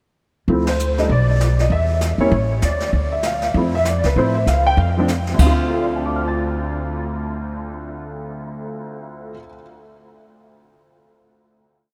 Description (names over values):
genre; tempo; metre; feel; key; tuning
jazz piano trio; 195 BPM; 4/4; swing 60% on 8ths; D minor; A4 = 436 Hz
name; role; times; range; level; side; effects
warm grand piano; melody; 0.5-9.6 s; D2 to A6; -23 LUFS; equal; ensemble chorus, analog delay
upright bass; bass; 0.5-9.3 s; A1 to A2; -22 LUFS; equal; none
jazz brush drum kit; drums; 0.5-5.6 s; brushed snare drum, crash cymbal, hi-hat, kick drum, ride cymbal, snare drum; -28 LUFS; equal; none
room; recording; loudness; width
moderate huge ambient reverb, RT60 5.3 s; dreamy mix soaked in reverb; -19 LUFS; mono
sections
0.5-5.4 A section; 5.4-7.8 final chord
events
band accent 0.6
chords
0.5 Dm7; 1.1 Bm; 1.7 N.C.; 2.3 A; 2.9 Dm7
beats
| 0.48 0.79 1.09 1.40 | 1.71 2.01 2.32 2.63 | 2.93 3.24 3.55 3.85 | 4.16 4.47 4.78 5.08 | 5.39 5.70 6.01 6.31 | 6.62 6.93 7.23 7.54